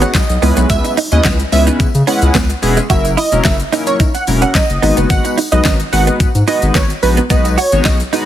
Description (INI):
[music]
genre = dance-pop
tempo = 109 BPM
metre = 4/4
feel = straight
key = unclear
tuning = A4 = 439 Hz
[part]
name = plucky unison lead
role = melody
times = 0.0-8.0 s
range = B4 to F#5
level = -18 LUFS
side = right 2 dB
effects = sidechain pumping, ping-pong delay
[part]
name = chorused polysynth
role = accompaniment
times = 0.0-8.3 s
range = F#3 to C#5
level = -18 LUFS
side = left 2 dB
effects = sidechain pumping
[part]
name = direct-recorded clean electric guitar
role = riff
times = 0.0-8.2 s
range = G#3 to F#4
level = -20 LUFS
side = right 8 dB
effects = ensemble chorus
[part]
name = saturated sub bass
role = bass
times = 0.0-8.0 s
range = E1 to C#3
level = -15 LUFS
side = left 1 dB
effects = sidechain pumping
[part]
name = pop drum kit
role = drums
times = 0.0-8.3 s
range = handclaps, hi-hat, kick drum, shaker, snare drum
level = -16 LUFS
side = left 1 dB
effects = none
[part]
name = downlifter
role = sound effects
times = 0.0-2.9 s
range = none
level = -33 LUFS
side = equal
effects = none
[part]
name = tambourine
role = percussion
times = 0.1-8.3 s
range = none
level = -32 LUFS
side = left 10 dB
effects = none
[sound]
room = little or no reverb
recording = heavily compressed radio sound, multiband compression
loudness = -11 LUFS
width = side -12 dB against mid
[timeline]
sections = 0.0-8.3 A section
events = none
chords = 0.4 C#m7; 2.9 F#7; 4.8 G#m7; 7.3 B6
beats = 0.15 | 0.70 1.25 1.80 2.35 | 2.90 3.45 4.00 4.55 | 5.10 5.65 6.20 6.75 | 7.30 7.85